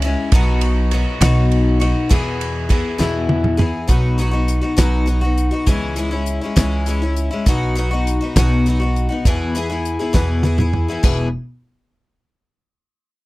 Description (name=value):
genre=folk rock and heartland rock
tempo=67 BPM (dotted quarters)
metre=6/8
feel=straight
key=E major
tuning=A4 = 440 Hz
part: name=picked twelve-string acoustic guitar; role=accompaniment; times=0.0-11.3 s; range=E2 to G#4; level=-20 LUFS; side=left 3 dB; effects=none
part: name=upright bass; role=bass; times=0.0-11.3 s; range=E1 to E2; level=-19 LUFS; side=equal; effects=none
part: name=damped 70s drum kit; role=drums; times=0.0-11.2 s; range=crash cymbal, hi-hat, kick drum, ride cymbal, snare drum, toms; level=-18 LUFS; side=right 1 dB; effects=none
room=little or no reverb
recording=dry, close 1970s-style studio recording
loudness=-15 LUFS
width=side -19 dB against mid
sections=0.0-3.9 A section; 3.9-11.0 B section; 11.0-12.8 C section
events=drum fill 3.0-3.9, 10.1-11.0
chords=0.3 B; 2.1 E; 3.9 B; 5.7 C#m; 7.5 B; 9.2 E